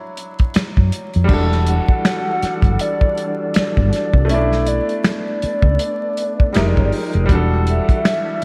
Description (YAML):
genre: R&B, neo-soul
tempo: 80 BPM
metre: 4/4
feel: swing 59% on 16ths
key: E dorian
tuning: A4 = 440 Hz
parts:
  - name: hollow clarinet-like synth lead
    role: melody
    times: 0.0-8.4 s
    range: C#5 to F#5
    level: -25 LUFS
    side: equal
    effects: chorus, slapback echo
  - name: clear baby grand piano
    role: accompaniment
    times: 0.0-8.4 s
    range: F#3 to D5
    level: -26 LUFS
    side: equal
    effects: slapback echo
  - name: warm soul drum kit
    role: drums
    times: 0.2-8.4 s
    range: crash cymbal, finger snaps, hi-hat, kick drum, snare drum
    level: -20 LUFS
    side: equal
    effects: none
  - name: woody fretless electric bass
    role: bass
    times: 0.6-7.8 s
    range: E1 to F#2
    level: -19 LUFS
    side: equal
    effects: none
  - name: tonewheel organ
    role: sustained chords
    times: 1.3-8.4 s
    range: E3 to Bb4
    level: -29 LUFS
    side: equal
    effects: slow rotary speaker, chorus vibrato
room: light reverb, studio reverb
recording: vinyl crackle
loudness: -17 LUFS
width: mono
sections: 0.0-1.3 A section; 1.3-8.4 B section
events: none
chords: 0.0 Dmaj9; 1.3 Em11; 4.3 Bm11; 6.5 Fm11; 7.3 Em11